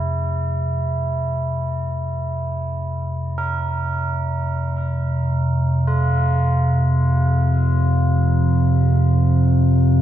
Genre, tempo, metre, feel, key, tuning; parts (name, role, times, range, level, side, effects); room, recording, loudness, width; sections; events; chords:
dark ambient drone; free time; A4 = 440 Hz
tubular bells; arpeggios; 0.0-10.0 s; E4 to Bb4; -26 LUFS; right 1 dB; diffuse ambient delay
deep rumbling drone; drone; 0.0-10.0 s; F2 to C3; -18 LUFS; equal; built-in reverb, lush chorus
wet cathedral reverb, RT60 5.2 s; dark, warm production; -17 LUFS; side -11 dB against mid
0.0-10.0 A section
0.0 F5